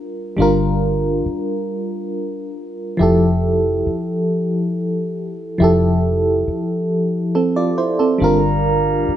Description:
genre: slow six-eight R&B.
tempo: 46 BPM (dotted quarters).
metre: 6/8.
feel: straight.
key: F major.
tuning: A4 = 440 Hz.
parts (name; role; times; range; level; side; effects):
FM electric piano with tremolo; accompaniment; 0.0-9.2 s; F3 to D5; -17 LUFS; equal; none.
vintage muted fingered electric bass; bass; 0.4-9.1 s; F1 to G1; -20 LUFS; equal; none.
glass harmonica; sustained chords; 8.2-9.2 s; G4 to Bb5; -22 LUFS; right 3 dB; none.
room: moderate stone room reverb, RT60 1.1 s.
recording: band playing live in one room, nothing above 11.0 kHz.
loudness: -16 LUFS.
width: side -11 dB against mid.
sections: 0.0-9.2 A section.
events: none.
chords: 0.0 Gm7; 3.0 Fmaj9; 8.2 Gm7.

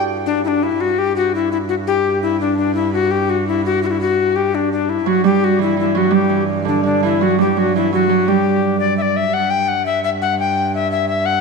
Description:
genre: medieval dance.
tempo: 113 BPM (dotted quarters).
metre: 6/8.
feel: straight.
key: unclear.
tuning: A4 = 440 Hz.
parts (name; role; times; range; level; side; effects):
bright reedy tenor recorder; melody; 0.0-11.4 s; D4 to G5; -17 LUFS; left 7 dB; none.
Celtic harp; second line; 0.0-2.2, 5.1-11.4 s; D3 to A4; -18 LUFS; right 8 dB; none.
rich viola da gamba; drone; 0.0-11.4 s; G2; -24 LUFS; right 1 dB; none.
room: wet echo chamber reverb, RT60 2.1 s.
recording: 1960s-style stereo with parts hard left and right.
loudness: -15 LUFS.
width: side -4 dB against mid.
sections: 0.8-9.3 A section; 9.3-11.4 A section.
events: none.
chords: none.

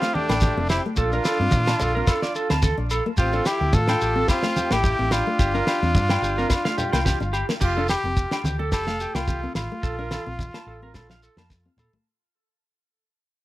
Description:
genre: highlife guitar band.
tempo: 108 BPM.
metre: 4/4.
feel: swing 54% on 16ths.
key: F major.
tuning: A4 = 440 Hz.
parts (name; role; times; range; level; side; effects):
clear trumpet; melody; 0.0-11.5 s; D4 to A4; -26 LUFS; equal; tape echo.
edgy alto saxophone; second line; 0.0-7.3 s; A3 to F4; -32 LUFS; left 2 dB; none.
nylon-string guitar; accompaniment; 0.0-12.0 s; F3 to D4; -32 LUFS; left 4 dB; none.
electric guitar at the edge of break-up; arpeggios; 0.0-11.9 s; G4 to A5; -28 LUFS; right 2 dB; tape echo.
damped 70s drum kit; drums; 0.0-12.1 s; crash cymbal, kick drum, snare drum, toms; -24 LUFS; equal; none.
congas; percussion; 0.2-11.9 s; none; -30 LUFS; right 1 dB; none.
hollow-body short-scale fingered electric bass; bass; 0.3-11.9 s; F1 to Bb2; -26 LUFS; equal; none.
agogo bells; percussion; 0.3-11.9 s; none; -34 LUFS; left 5 dB; none.
shekere; percussion; 0.3-11.9 s; none; -30 LUFS; equal; none.
room: light reverb.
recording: none.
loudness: -20 LUFS.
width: side -16 dB against mid.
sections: 0.0-7.6 A section; 7.6-12.1 B section.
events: drum fill 7.1-7.6, 11.5-12.1; fade-out 7.6-12.1.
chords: 0.0 Fadd9; 1.0 Bbmaj7; 3.2 Fadd9/A; 5.4 Gm7; 7.6 Fadd9; 9.8 Bbmaj7(no3).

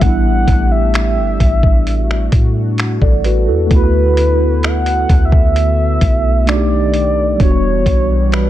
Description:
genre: contemporary R&B.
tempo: 65 BPM.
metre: 4/4.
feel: straight.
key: D major.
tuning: A4 = 440 Hz.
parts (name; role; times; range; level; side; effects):
mellow horn-like synth lead; melody; 0.0-8.5 s; B4 to F#5; -18 LUFS; equal; chorus, tape echo.
mellow tine electric piano; accompaniment; 0.0-8.5 s; G3 to D5; -19 LUFS; right 1 dB; medium stereo tremolo.
chorused pulse-width pad; sustained chords; 0.0-8.5 s; D3 to G4; -24 LUFS; equal; sidechain pumping.
soft 808-style bass; bass; 0.0-8.5 s; E1 to A2; -15 LUFS; equal; none.
dusty soul sampler-style drum kit; drums; 0.0-8.5 s; finger snaps, hi-hat, kick drum; -14 LUFS; equal; none.
room: digital ambience.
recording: none.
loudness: -11 LUFS.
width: side -13 dB against mid.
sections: 0.0-8.5 A section.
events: none.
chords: 0.0 A9sus4; 3.7 D6; 6.5 B7alt; 7.4 Em9.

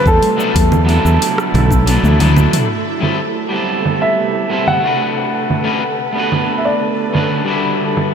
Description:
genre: sunset chillout.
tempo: 91 BPM.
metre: 4/4.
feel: straight.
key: A dorian.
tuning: A4 = 440 Hz.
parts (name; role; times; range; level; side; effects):
warm baby grand piano; melody; 0.0-7.6 s; A4 to F#5; -19 LUFS; equal; ping-pong delay, shimmer reverb.
electric guitar at the edge of break-up; accompaniment; 0.0-8.1 s; F#3 to B4; -18 LUFS; moving between left 5 dB and right 6 dB; auto-pan, ping-pong delay, shimmer reverb.
shimmering ambient pad; sustained chords; 0.0-8.1 s; C3 to B4; -22 LUFS; right 1 dB; chorus, built-in reverb, phaser, shimmer reverb.
wind-like tuned noise texture; texture; 0.1-8.1 s; A4 to A5; -27 LUFS; right 2 dB; built-in reverb, shimmer reverb.
modern bright fingered electric bass; bass; 0.1-2.5 s; B1 to E2; -13 LUFS; equal; tube saturation.
deep house drum kit; drums; 0.1-8.1 s; congas, hi-hat, rim click, shaker, toms; -19 LUFS; right 2 dB; low-pass filter on perc, low-pass filter on hats, low-pass filter on snare, low-pass filter on toms.
electronic kick drum; drums; 0.1-1.8 s; none; -16 LUFS; equal; none.
congas; percussion; 0.2-2.3 s; none; -23 LUFS; left 5 dB; none.
room: moderate lush hall reverb, RT60 2.0 s.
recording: none.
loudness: -12 LUFS.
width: side -7 dB against mid.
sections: 0.0-2.7 A section; 2.7-8.1 B section.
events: drum fill 1.7-2.7; kick drops out 2.0-2.7; filter sweep on ambient pad 2.7-8.1.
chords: 0.1 E9sus4; 2.7 Am9; 5.0 Bm9; 7.6 Em9.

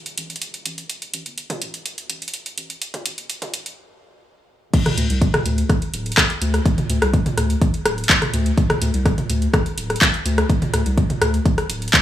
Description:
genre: melodic techno.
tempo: 125 BPM.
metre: 4/4.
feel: straight.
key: unclear.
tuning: A4 = 441 Hz.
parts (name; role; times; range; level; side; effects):
house drum kit; drums; 0.1-12.0 s; crash cymbal, handclaps, hi-hat, rim click, toms; -21 LUFS; equal; none.
round analog bass; bass; 0.2-11.9 s; D1 to D2; -21 LUFS; equal; sidechain pumping.
electronic kick drum; drums; 4.7-12.0 s; none; -18 LUFS; equal; none.
room: digital ambience.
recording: dry, gritty hardware recording, high-pass filter, studio ambience.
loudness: -18 LUFS.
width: side -12 dB against mid.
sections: 0.0-4.7 A section; 4.7-12.0 B section.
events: build-up 0.0-4.7; filter sweep 0.0-4.7; stop 3.8-4.7; drop 4.7-12.0.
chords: none.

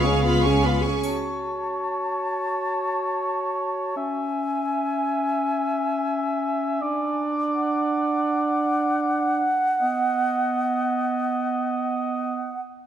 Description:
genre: cinematic, emotional film score for orchestra.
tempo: 82 BPM.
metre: 4/4.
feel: uneven beats, rubato.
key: F# minor.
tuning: A4 = 443 Hz.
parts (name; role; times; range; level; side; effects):
warm studio violin section; melody; 0.0-0.7 s; E#5; -31 LUFS; left 4 dB; none.
clear clarinet; second line; 0.0-12.6 s; B3 to G#4; -28 LUFS; right 2 dB; none.
clear studio violin section; second line; 0.0-1.0 s; E#5 to C#6; -27 LUFS; right 1 dB; none.
warm studio viola section; accompaniment; 0.0-1.0 s; B3 to G#4; -24 LUFS; equal; none.
dark symphonic double bass section; bass; 0.0-0.8 s; C#2; -24 LUFS; right 1 dB; none.
warm studio cello section; bass; 0.0-0.6 s; G#3; -32 LUFS; left 2 dB; none.
concert flute; second line; 1.0-12.6 s; F#5 to A5; -26 LUFS; equal; none.
mellow oboe; second line; 1.0-12.6 s; C#5 to E5; -28 LUFS; equal; none.
triangle; percussion; 1.0-2.5 s; none; -46 LUFS; left 2 dB; none.
room: moderate scoring stage reverb, RT60 1.5 s.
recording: none.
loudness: -22 LUFS.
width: side -10 dB against mid.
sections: 0.0-1.0 A section; 1.0-12.9 B section.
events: none.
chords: 0.0 C#7; 1.0 F#m; 4.0 C#m; 6.8 D; 9.8 B.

